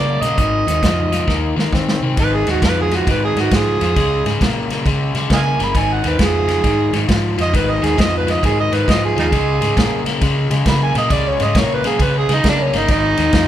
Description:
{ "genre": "electric blues shuffle", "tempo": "134 BPM", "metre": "4/4", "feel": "swing 65% on 8ths", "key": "unclear", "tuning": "A4 = 440 Hz", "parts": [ { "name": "overdriven harmonica", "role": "melody", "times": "0.0-13.5 s", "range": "Db4 to Cb6", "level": "-19 LUFS", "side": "right 3 dB", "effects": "none" }, { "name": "overdriven electric guitar", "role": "riff", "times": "0.0-13.5 s", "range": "Ab2 to C4", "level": "-20 LUFS", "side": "left 3 dB", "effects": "none" }, { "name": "vintage muted fingered electric bass", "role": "bass", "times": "0.0-13.5 s", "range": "G1 to Eb3", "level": "-21 LUFS", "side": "equal", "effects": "none" }, { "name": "warm soul drum kit", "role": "drums", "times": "0.2-13.5 s", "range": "hi-hat, kick drum, ride cymbal, snare drum", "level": "-19 LUFS", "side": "equal", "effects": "none" } ], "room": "moderate large studio reverb, RT60 1.4 s", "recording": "band playing live in one room", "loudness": "-14 LUFS", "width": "side -11 dB against mid", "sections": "0.0-2.2 A section; 2.2-13.5 B section", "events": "drum fill 1.3-2.2; harmonica solo 2.2-13.5", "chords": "0.4 Ab5; 1.3 Eb5; 2.2 Ab5; 4.0 Db5; 5.8 Ab5; 9.3 Db5; 12.9 Ab5" }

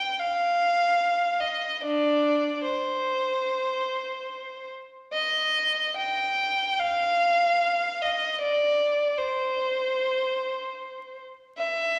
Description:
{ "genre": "classical, free, expressive piece for unaccompanied violin", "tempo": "free time", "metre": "none", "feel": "none", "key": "C minor", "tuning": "A4 = 439 Hz", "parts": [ { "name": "warm violin", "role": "solo", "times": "0.0-12.0 s", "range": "D4 to G5", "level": "-26 LUFS", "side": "equal", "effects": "none" } ], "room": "wet recital hall reverb, RT60 1.6 s", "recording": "vinyl crackle", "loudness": "-26 LUFS", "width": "mono", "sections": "0.0-12.0 A section", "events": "none", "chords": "none" }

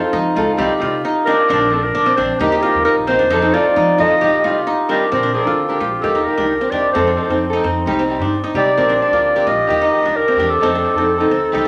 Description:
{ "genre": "highlife", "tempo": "132 BPM", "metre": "4/4", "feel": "straight", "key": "Bb major", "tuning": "A4 = 440 Hz", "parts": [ { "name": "warm clarinet", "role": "melody", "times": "0.0-11.7 s", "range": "G4 to Eb5", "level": "-19 LUFS", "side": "equal", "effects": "none" }, { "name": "picked steel-string acoustic guitar", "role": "accompaniment", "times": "0.0-11.7 s", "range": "F3 to Bb4", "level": "-24 LUFS", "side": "equal", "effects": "none" }, { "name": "qanun", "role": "arpeggios", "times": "0.0-11.7 s", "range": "C4 to G4", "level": "-20 LUFS", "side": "equal", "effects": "none" }, { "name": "upright bass", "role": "bass", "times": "0.1-11.7 s", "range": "Bb1 to F3", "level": "-29 LUFS", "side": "equal", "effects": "none" } ], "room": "moderate large studio reverb, RT60 0.9 s", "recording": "none", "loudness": "-16 LUFS", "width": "mono", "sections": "0.0-5.1 A section; 5.1-11.7 B section", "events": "none", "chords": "0.0 F7; 0.6 Cm; 1.5 Bbadd9; 2.4 Eb; 3.3 F7; 4.2 Cm; 5.1 Bbadd9; 6.0 Eb; 7.0 F7; 7.9 Cm; 8.8 Bbadd9; 9.7 Eb; 10.6 F7" }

